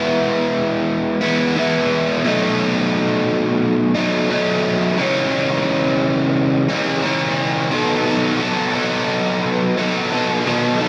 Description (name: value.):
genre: rock.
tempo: 88 BPM.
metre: 4/4.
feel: straight.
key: unclear.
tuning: A4 = 441 Hz.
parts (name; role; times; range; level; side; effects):
biting overdriven guitar; solo; 0.0-10.9 s; B2 to A4; -18 LUFS; equal; lush chorus, digital delay.
room: wet lush hall reverb, RT60 2.1 s.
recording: none.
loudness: -18 LUFS.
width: mono.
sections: 0.0-7.7 A section; 7.7-10.9 B section.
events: none.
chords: 0.0 E; 2.3 B7; 5.0 C#m; 7.7 B5.